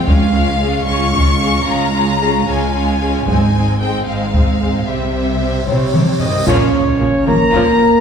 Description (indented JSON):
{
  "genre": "cinematic, epic orchestral film score",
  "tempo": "75 BPM (dotted quarters)",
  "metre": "12/8",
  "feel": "straight",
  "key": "unclear",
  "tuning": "A4 = 439 Hz",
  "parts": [
    { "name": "warm symphonic violin section", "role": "melody", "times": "0.0-8.0 s", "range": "Db5 to Db6", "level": "-21 LUFS", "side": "left 4 dB", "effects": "none" },
    { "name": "rich chamber violin section", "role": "second line", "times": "0.0-7.8 s", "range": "Bb3 to F5", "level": "-24 LUFS", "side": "left 3 dB", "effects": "none" },
    { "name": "clear symphonic viola section", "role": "accompaniment", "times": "0.0-7.8 s", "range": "F3 to Db4", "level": "-22 LUFS", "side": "right 2 dB", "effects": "none" },
    { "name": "dark studio double bass section", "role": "bass", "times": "0.1-7.6 s", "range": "Ab1 to Db2", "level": "-22 LUFS", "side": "right 2 dB", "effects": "none" },
    { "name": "rich symphonic cello section", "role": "bass", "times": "0.1-7.6 s", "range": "Db2 to C3", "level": "-20 LUFS", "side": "right 2 dB", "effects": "none" },
    { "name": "taiko ensemble", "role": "drums", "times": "0.1-8.0 s", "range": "none", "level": "-18 LUFS", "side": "left 1 dB", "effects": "none" },
    { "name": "mellow French horn section", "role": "sustained chords", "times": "0.6-8.0 s", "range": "C4 to Db5", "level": "-20 LUFS", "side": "left 1 dB", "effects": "none" },
    { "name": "cymbal swell and sub drop", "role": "sound effects", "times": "5.2-8.0 s", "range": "none", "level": "-28 LUFS", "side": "equal", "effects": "none" },
    { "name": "warm trombone section", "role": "sustained chords", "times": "5.7-8.0 s", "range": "C3 to Bb3", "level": "-20 LUFS", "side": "right 4 dB", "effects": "none" },
    { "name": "mellow trumpet section", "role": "stabs", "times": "5.7-8.0 s", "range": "Db5 to Bb5", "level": "-19 LUFS", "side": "equal", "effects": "none" }
  ],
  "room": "wet scoring stage reverb, RT60 1.6 s",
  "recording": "heard from further back in the room",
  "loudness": "-12 LUFS",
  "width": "side -7 dB against mid",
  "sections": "0.0-6.5 A section; 6.5-8.0 A section",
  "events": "cymbal swell 5.2-6.5; drum fill 5.7-6.5; band accent 6.5-7.0; impact 6.5-8.0",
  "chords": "0.1 Db; 3.3 Ab; 4.9 C; 6.5 Bbm"
}